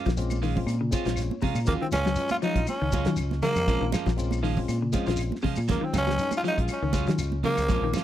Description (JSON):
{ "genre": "afrobeat", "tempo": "120 BPM", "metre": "4/4", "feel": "swing 53% on 16ths", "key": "Eb dorian", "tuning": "A4 = 440 Hz", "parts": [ { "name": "clean electric guitar", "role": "stabs", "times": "0.0-8.0 s", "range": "F3 to F4", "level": "-32 LUFS", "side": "right 9 dB", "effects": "none" }, { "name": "clean electric guitar", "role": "arpeggios", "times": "0.1-8.0 s", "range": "C3 to Gb3", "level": "-31 LUFS", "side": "left 7 dB", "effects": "wide subtle chorus" }, { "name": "fingered electric bass", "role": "bass", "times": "0.1-7.9 s", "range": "Bb1 to Eb3", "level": "-28 LUFS", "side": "equal", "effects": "none" }, { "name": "damped 70s drum kit", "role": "drums", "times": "0.1-8.0 s", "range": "hi-hat, kick drum, snare drum", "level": "-30 LUFS", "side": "equal", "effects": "none" }, { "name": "congas", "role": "percussion", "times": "0.1-8.0 s", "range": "none", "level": "-34 LUFS", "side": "right 8 dB", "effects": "none" }, { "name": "shekere", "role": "percussion", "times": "0.1-8.0 s", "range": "none", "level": "-38 LUFS", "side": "left 2 dB", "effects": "none" }, { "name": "tine electric piano", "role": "accompaniment", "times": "0.2-8.0 s", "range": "Gb3 to Bb5", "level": "-34 LUFS", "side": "left 7 dB", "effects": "none" }, { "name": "claves", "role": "percussion", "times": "0.3-8.0 s", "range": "none", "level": "-42 LUFS", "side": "left 7 dB", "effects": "none" }, { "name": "growling tenor saxophone", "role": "melody", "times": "1.7-7.9 s", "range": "Bb3 to F4", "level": "-29 LUFS", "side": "equal", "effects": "tape echo" } ], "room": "little or no reverb", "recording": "dry, close 1970s-style studio recording", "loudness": "-24 LUFS", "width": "side -12 dB against mid", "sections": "0.0-8.0 A section", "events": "tine electric piano fill 0.9-1.7", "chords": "0.0 Bbm7; 1.7 Ebm11; 3.7 Bbm7; 5.7 Ebm11" }